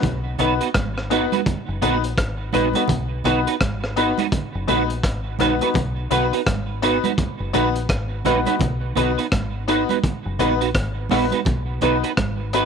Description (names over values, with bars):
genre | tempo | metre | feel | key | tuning
roots reggae | 84 BPM | 4/4 | swing 61% on 16ths | B major | A4 = 441 Hz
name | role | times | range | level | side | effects
bright upright piano | stabs | 0.0-12.7 s | B3 to B4 | -24 LUFS | left 13 dB | none
deep dub fingered electric bass | bass | 0.0-12.7 s | F#1 to B1 | -26 LUFS | equal | transformer saturation
crunchy breakbeat drum kit | drums | 0.0-12.7 s | hi-hat, kick drum, rim click | -24 LUFS | equal | none
congas | percussion | 0.0-12.4 s | none | -29 LUFS | right 10 dB | none
semi-hollow electric guitar | accompaniment | 0.4-12.7 s | B3 to B4 | -23 LUFS | right 12 dB | ensemble chorus, dub echo
room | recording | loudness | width
studio reverb | 1960s-style stereo with parts hard left and right | -18 LUFS | side -6 dB against mid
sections
0.0-12.7 A section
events
none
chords
0.0 B